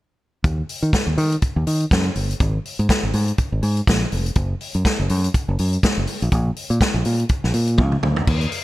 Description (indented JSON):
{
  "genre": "disco",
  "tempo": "122 BPM",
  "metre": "4/4",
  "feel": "swing 56% on 16ths",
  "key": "Eb minor",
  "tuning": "A4 = 440 Hz",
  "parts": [
    { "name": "fingered electric bass", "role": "bass", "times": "0.4-8.4 s", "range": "F1 to Eb3", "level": "-19 LUFS", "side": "equal", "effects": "none" },
    { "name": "vintage drum kit", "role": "drums", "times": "0.4-8.6 s", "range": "crash cymbal, hi-hat, kick drum, snare drum, toms", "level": "-21 LUFS", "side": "equal", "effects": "gated reverb" }
  ],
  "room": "little or no reverb",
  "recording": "none",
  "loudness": "-18 LUFS",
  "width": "side -17 dB against mid",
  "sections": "0.4-8.3 A section",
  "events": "drum fill 7.8-8.3",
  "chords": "none",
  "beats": "| 0.45 0.94 1.43 1.92 | 2.40 2.90 3.38 3.88 | 4.37 4.86 5.34 5.83 | 6.32 6.81 7.30 7.79 | 8.28"
}